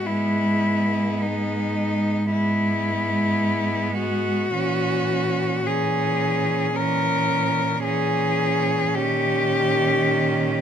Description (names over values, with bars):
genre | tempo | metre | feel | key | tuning
classical, lyrical piece for cello ensemble | 54 BPM | 4/4 | rubato | G# minor | A4 = 440 Hz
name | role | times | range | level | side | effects
rich cello | melody | 0.0-10.6 s | D#4 to A#4 | -23 LUFS | left 4 dB | none
rich cello | second line | 0.0-10.6 s | B3 to C#4 | -27 LUFS | right 11 dB | none
rich cello | accompaniment | 0.0-10.6 s | D#3 to G#3 | -26 LUFS | equal | none
rich cello | bass | 0.0-10.6 s | G#2 to A#2 | -28 LUFS | right 2 dB | none
room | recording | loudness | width
light reverb | close, detailed microphones | -20 LUFS | side -8 dB against mid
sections
0.0-10.6 A section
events
none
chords
0.0 G#m; 4.6 A#m7b5; 8.9 D#7/A#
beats
| 0.07 1.22 2.33 3.44 | 4.55 5.67 6.75 7.83 | 8.94 10.06